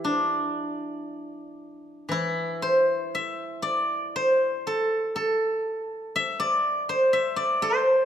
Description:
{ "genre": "chinese traditional, Chinese solo plucked strings", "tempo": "57-62 BPM", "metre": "4/4", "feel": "rubato", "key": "unclear", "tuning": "A4 = 442 Hz", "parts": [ { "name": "steel-string zither", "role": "solo", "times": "0.0-8.1 s", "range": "E3 to E5", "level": "-23 LUFS", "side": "equal", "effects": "none" } ], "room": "moderate recital hall reverb, RT60 1.3 s", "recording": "none", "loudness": "-23 LUFS", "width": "side -9 dB against mid", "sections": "0.0-8.1 A section", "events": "none", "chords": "none" }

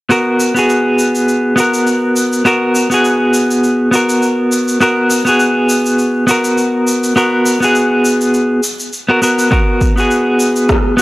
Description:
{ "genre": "organic downtempo", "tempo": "102 BPM", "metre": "4/4", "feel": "swing 56% on 16ths", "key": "G# minor", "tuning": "A4 = 440 Hz", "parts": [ { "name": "clean electric guitar", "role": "accompaniment", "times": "0.1-11.0 s", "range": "B3 to A#4", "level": "-11 LUFS", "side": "equal", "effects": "tremolo, sidechain pumping, low-pass filter, analog delay" }, { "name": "electronic shaker and rim click", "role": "drums", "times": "0.1-11.0 s", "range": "none", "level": "-21 LUFS", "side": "equal", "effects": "overdrive" }, { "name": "electronic kick drum", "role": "drums", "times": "9.5-10.8 s", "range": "none", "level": "-14 LUFS", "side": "equal", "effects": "overdrive" } ], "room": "light reverb", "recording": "dry, gritty hardware recording, cassette tape", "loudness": "-10 LUFS", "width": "side -18 dB against mid", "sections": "0.1-11.0 A section", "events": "none", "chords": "0.1 G#m7" }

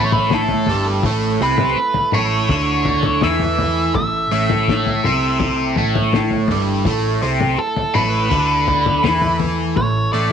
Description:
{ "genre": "psychedelic rock", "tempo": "82 BPM", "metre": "4/4", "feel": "straight", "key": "unclear", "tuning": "A4 = 440 Hz", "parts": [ { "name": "octave-fuzz lead guitar", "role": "melody", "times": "0.0-10.3 s", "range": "A4 to E5", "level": "-20 LUFS", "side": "right 1 dB", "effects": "distortion, slapback echo" }, { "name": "combo organ", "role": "sustained chords", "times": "0.0-10.3 s", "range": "A3 to A4", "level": "-29 LUFS", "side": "right 13 dB", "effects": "none" }, { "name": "cranked stack guitar", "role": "riff", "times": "0.0-10.3 s", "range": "G2 to E4", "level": "-19 LUFS", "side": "equal", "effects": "overdrive, phaser" }, { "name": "hollow-body short-scale picked electric bass", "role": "bass", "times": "0.0-10.3 s", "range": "G1 to E2", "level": "-22 LUFS", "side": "right 1 dB", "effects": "none" }, { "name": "cloth-damped thuddy drum kit", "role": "drums", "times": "0.1-9.9 s", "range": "kick drum, snare drum, toms", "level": "-21 LUFS", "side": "left 5 dB", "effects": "none" } ], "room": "light reverb", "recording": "1960s-style stereo", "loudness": "-15 LUFS", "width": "side -8 dB against mid", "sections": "0.0-10.3 A section", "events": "none", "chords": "0.0 A5" }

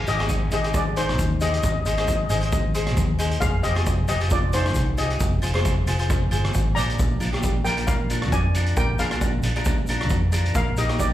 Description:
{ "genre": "calypso", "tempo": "134 BPM", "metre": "4/4", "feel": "swing 54% on 16ths", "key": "unclear", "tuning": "A4 = 443 Hz", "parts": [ { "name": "steel pan", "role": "melody", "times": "0.0-11.1 s", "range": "Eb4 to Bb5", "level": "-27 LUFS", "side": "left 2 dB", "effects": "slapback echo" }, { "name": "fingered electric bass", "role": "bass", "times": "0.0-11.1 s", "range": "F1 to F2", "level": "-24 LUFS", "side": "equal", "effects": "none" }, { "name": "cavaquinho", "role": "accompaniment", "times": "0.1-11.1 s", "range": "D4 to Eb5", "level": "-29 LUFS", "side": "left 1 dB", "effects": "slapback echo" }, { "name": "street-band drum kit", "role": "drums", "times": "0.1-11.1 s", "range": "hi-hat, kick drum, rim click", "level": "-25 LUFS", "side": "equal", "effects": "none" }, { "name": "egg shaker", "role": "percussion", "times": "0.1-11.1 s", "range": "none", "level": "-39 LUFS", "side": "left 2 dB", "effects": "none" } ], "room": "little or no reverb", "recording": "live gig heard through the venue's PA, club reverb", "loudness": "-20 LUFS", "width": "side -13 dB against mid", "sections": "0.0-11.1 A section", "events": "none", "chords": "0.0 Ab; 3.4 Fm7; 7.0 Bb; 10.6 Eb/Bb" }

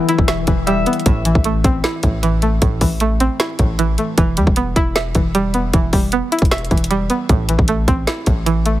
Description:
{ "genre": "hip hop, trap", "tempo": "154 BPM", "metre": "4/4", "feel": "half-time", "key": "A minor", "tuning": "A4 = 440 Hz", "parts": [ { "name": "string-like resonator pluck", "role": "accompaniment", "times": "0.0-8.8 s", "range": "A2 to E5", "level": "-19 LUFS", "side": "right 2 dB", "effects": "chorus" }, { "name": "warm analog pad", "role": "sustained chords", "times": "0.0-1.0 s", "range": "none", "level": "barely audible", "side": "none", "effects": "none" }, { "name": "concert harp", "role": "arpeggios", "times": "0.0-2.4 s", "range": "E3 to E5", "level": "-24 LUFS", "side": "left 6 dB", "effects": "ping-pong delay" }, { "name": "trap drum kit", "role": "drums", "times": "0.1-8.7 s", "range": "hi-hat, kick drum, snare drum", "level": "-17 LUFS", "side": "equal", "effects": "none" }, { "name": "long sustained 808-style bass", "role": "bass", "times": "0.2-8.8 s", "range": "E1 to E2", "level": "-20 LUFS", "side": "equal", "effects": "none" } ], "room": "digital ambience", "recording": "heavily compressed radio sound, multiband compression", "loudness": "-14 LUFS", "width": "side -14 dB against mid", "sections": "0.0-1.1 A section; 1.1-8.8 B section", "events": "none", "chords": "0.0 Em; 1.1 Am; 4.2 Em; 7.3 Am" }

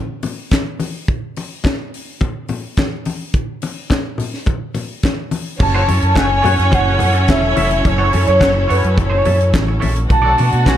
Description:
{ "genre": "disco", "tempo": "106 BPM", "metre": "4/4", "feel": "straight", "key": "F# minor", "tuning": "A4 = 440 Hz", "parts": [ { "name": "tight funk drum kit", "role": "drums", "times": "0.2-10.8 s", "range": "crash cymbal, handclaps, hi-hat, kick drum, snare drum", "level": "-20 LUFS", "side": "equal", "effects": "none" }, { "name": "congas", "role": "percussion", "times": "0.2-10.8 s", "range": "none", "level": "-25 LUFS", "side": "left 4 dB", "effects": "none" }, { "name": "warm velvety synth lead", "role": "melody", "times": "5.6-10.8 s", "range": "B4 to A5", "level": "-17 LUFS", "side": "equal", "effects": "chorus, slapback echo" }, { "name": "rich studio violin section", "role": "second line", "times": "5.6-10.8 s", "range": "C#4 to F#5", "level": "-21 LUFS", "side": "right 1 dB", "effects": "none" }, { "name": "semi-hollow electric guitar", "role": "accompaniment", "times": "5.6-10.5 s", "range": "C#4 to E5", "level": "-25 LUFS", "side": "right 5 dB", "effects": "none" }, { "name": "clear studio string section", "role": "sustained chords", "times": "5.6-10.8 s", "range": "F#3 to A4", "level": "-26 LUFS", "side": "left 1 dB", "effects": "none" }, { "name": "overdriven fingered electric bass", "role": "bass", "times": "5.6-10.8 s", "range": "E1 to B2", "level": "-16 LUFS", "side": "equal", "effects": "none" }, { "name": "mellow horn section", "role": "stabs", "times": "5.7-10.8 s", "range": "D3 to C#5", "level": "-25 LUFS", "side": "left 1 dB", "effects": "none" } ], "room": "studio reverb", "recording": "dark, warm production", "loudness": "-14 LUFS", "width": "side -11 dB against mid", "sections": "0.0-5.6 A section; 5.6-10.8 B section", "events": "none", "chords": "0.0 N.C.; 5.6 F#m7; 10.1 Bm7" }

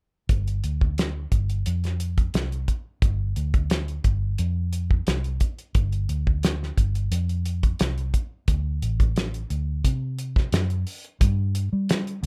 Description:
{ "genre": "straight-eighth soul blues", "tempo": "88 BPM", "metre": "4/4", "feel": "straight", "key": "unclear", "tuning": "A4 = 440 Hz", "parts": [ { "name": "vintage muted fingered electric bass", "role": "bass", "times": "0.3-12.3 s", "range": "G1 to G3", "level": "-28 LUFS", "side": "equal", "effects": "none" }, { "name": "cloth-damped thuddy drum kit", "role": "drums", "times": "0.3-12.3 s", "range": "hi-hat, kick drum, snare drum", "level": "-25 LUFS", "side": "equal", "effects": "none" } ], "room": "little or no reverb", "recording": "none", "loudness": "-25 LUFS", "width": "mono", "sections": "0.3-11.2 A section; 11.2-12.3 B section", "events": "none", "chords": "none" }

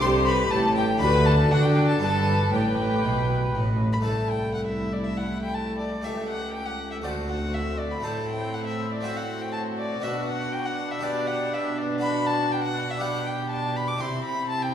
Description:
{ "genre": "classical, baroque-style concerto movement with solo episodes", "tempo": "120 BPM", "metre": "4/4", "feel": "straight", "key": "unclear", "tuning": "A4 = 440 Hz", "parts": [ { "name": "warm chamber violin section", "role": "melody", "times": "0.0-14.7 s", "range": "G4 to C6", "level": "-37 LUFS", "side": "left 3 dB", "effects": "none" }, { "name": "warm violin", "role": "melody", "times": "0.0-14.7 s", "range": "D5 to D6", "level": "-29 LUFS", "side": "left 2 dB", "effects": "none" }, { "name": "rich chamber violin section", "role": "second line", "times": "0.0-14.7 s", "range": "E4 to C5", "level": "-33 LUFS", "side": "left 2 dB", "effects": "none" }, { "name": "harpsichord", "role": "accompaniment", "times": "0.0-14.7 s", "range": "C2 to C5", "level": "-32 LUFS", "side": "equal", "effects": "none" }, { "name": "warm chamber viola section", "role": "accompaniment", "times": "0.0-14.7 s", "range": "A3 to B4", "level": "-31 LUFS", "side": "equal", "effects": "none" }, { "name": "rich chamber cello section", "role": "bass", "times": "0.0-14.7 s", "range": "C2 to D4", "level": "-28 LUFS", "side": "right 2 dB", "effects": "none" }, { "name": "warm studio double bass section", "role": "bass", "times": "0.0-4.0 s", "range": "G1 to D3", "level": "-26 LUFS", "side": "equal", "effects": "none" } ], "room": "wet recital hall reverb, RT60 1.7 s", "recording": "recorded in a church or concert hall, lossy compression artefacts", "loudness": "-23 LUFS", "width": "side -9 dB against mid", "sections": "0.0-4.0 A section; 4.0-14.7 B section", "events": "none", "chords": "0.0 Am7/C; 1.0 D; 2.0 G; 4.0 Am/C; 6.0 A7/C#; 7.0 D7; 8.0 Am; 9.0 F#dim/A; 10.0 Bm; 11.0 G/B; 12.0 Bm; 13.0 G/B; 14.0 C" }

